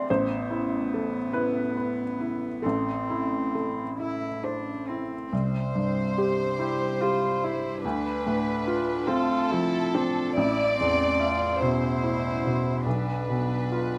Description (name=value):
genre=neoclassical piano and strings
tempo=44-50 BPM (dotted quarters)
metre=6/8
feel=rubato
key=A minor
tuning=A4 = 440 Hz
part: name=warm cello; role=second line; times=0.0-14.0 s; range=B3 to G4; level=-34 LUFS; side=equal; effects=none
part: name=felt-muted upright piano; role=accompaniment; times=0.0-14.0 s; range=A1 to E5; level=-29 LUFS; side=equal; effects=none
part: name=warm chamber violin section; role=melody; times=5.3-14.0 s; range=A4 to D5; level=-32 LUFS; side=equal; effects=none
room=light reverb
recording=none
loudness=-27 LUFS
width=mono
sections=0.0-5.3 A section; 5.3-14.0 A section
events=none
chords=0.1 Amadd9; 2.6 Am; 5.3 C; 7.8 Dm7; 10.4 Amadd9; 12.9 G7/B (rootless)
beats=| 0.08 1.33 | 2.64 3.98 | 5.32 6.59 | 7.84 9.07 | 10.36 11.60 | 12.86